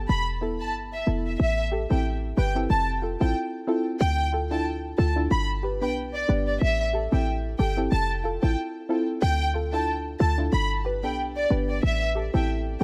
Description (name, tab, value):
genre	dancehall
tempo	92 BPM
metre	4/4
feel	swing 56% on 16ths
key	A minor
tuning	A4 = 439 Hz
part	short 808-style bass	bass	0.0-12.8 s	E1 to D2	-28 LUFS	equal	none
part	warm studio violin section	melody	0.1-12.8 s	D5 to B5	-31 LUFS	equal	digital delay
part	soft round pluck	accompaniment	0.4-12.8 s	B3 to B4	-32 LUFS	equal	chorus
room	small room ambience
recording	none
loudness	-25 LUFS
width	mono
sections	0.0-1.4 A section; 1.4-12.8 B section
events	none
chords	0.1 Esus4; 1.4 Am7; 2.7 Fmaj7; 4.0 Dmadd9; 5.3 G; 6.6 Am7; 7.9 Fmaj7; 9.2 Dmadd9; 10.5 G; 11.8 Am7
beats	0.09 0.74 | 1.40 2.05 2.70 3.35 | 4.00 4.66 5.31 5.96 | 6.61 7.27 7.92 8.57 | 9.22 9.88 10.53 11.18 | 11.83 12.48